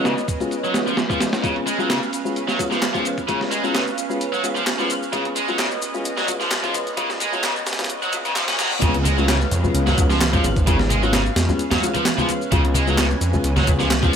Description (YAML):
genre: breakbeat, breaks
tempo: 130 BPM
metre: 4/4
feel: swing 53% on 16ths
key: unclear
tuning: A4 = 436 Hz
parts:
  - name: phased analog pad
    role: sustained chords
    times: 0.0-14.2 s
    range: C#4 to G#5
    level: -28 LUFS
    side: right 2 dB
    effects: phaser, chorus, sidechain pumping
  - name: tight distorted guitar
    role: riff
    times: 0.0-14.1 s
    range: C#3 to C#4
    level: -23 LUFS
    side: equal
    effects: distortion, low-pass filter, tape echo
  - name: dark grand piano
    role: stabs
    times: 0.0-14.2 s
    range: G#3 to E#4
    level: -26 LUFS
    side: left 4 dB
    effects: tape echo
  - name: breakbeat sampler-style drum kit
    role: drums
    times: 0.1-14.2 s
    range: hi-hat, kick drum, snare drum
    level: -23 LUFS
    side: right 1 dB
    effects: low-pass filter on kick, low-pass filter on hats, low-pass filter on snare, low-pass filter on room
  - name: electronic shaker and handclaps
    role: drums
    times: 0.1-14.1 s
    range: none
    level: -30 LUFS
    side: left 1 dB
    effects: high-pass filter on perc, high-pass filter on snare, high-pass filter on room
  - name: riser, reverse cymbal and downlifter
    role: sound effects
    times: 6.8-12.5 s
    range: none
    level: -33 LUFS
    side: equal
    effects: none
  - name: detuned saw bass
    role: bass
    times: 8.8-14.2 s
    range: G#1 to E#2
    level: -21 LUFS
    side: equal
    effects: none
  - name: congas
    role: percussion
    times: 9.1-14.1 s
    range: none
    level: -28 LUFS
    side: left 1 dB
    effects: none
room: light reverb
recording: high-pass filter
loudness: -18 LUFS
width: side -7 dB against mid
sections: 0.0-8.8 A section; 8.8-14.2 B section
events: build-up 0.0-8.8; filter sweep on drum 0.0-8.8; filter sweep 0.0-8.8; reverse cymbal 7.9-8.8; drop 8.8-14.2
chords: 0.0 C#7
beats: 0.06 0.52 0.98 | 1.44 1.90 2.37 2.83 | 3.29 3.75 4.21 4.67 | 5.13 5.60 6.06 6.52 | 6.98 7.44 7.90 8.37 | 8.83 9.29 9.75 10.21 | 10.67 11.13 11.60 12.06 | 12.52 12.98 13.44 13.90